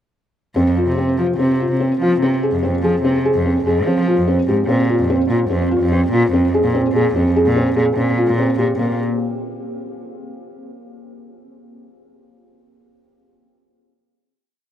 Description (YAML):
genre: contemporary instrumental, chamber music in an uneven meter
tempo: 146 BPM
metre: 5/4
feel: straight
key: unclear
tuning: A4 = 445 Hz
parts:
  - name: felt-muted upright piano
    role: arpeggios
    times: 0.6-9.0 s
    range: Bb3 to Ab4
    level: -17 LUFS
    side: equal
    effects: none
  - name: rich cello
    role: bass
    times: 0.6-9.0 s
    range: F2 to F3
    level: -19 LUFS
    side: equal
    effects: none
room: wet cathedral reverb, RT60 6.3 s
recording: in a vast, echoing space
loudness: -15 LUFS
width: side -10 dB against mid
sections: 0.6-8.8 A section; 8.8-10.8 final note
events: none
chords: 0.6 Fm; 4.7 Bbsus2; 8.8 N.C.